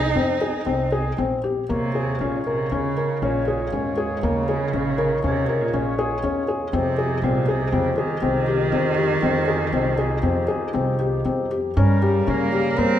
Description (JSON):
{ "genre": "contemporary instrumental, chamber music in an uneven meter", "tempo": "119 BPM", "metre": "5/4", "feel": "straight", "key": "F minor", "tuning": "A4 = 440 Hz", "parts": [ { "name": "rich cello", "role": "melody", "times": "0.0-13.0 s", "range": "Ab2 to Eb4", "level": "-26 LUFS", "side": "right 4 dB", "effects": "none" }, { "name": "felt-muted upright piano", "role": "arpeggios", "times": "0.0-13.0 s", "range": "Bb3 to Bb4", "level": "-23 LUFS", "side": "left 3 dB", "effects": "none" }, { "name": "upright bass", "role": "bass", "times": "0.0-13.0 s", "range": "Bb1 to Db3", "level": "-26 LUFS", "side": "right 1 dB", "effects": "none" }, { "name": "clear woodwind section", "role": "sustained chords", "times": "1.7-13.0 s", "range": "Db3 to Db5", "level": "-28 LUFS", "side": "left 1 dB", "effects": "none" } ], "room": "wet recital hall reverb, RT60 1.6 s", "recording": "none", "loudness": "-20 LUFS", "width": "side -11 dB against mid", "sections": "0.0-1.7 A section; 1.7-11.8 A section; 11.8-13.0 B section", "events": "none", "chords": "0.0 Fm7; 1.7 Eb9sus4; 6.7 Fm9; 11.8 Gdim", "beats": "0.16 0.67 1.18 | 1.69 2.21 2.71 3.22 3.73 | 4.23 4.73 5.24 5.74 6.24 | 6.73 7.23 7.73 8.23 8.72 | 9.22 9.72 10.23 10.74 11.25 | 11.77 12.27 12.78" }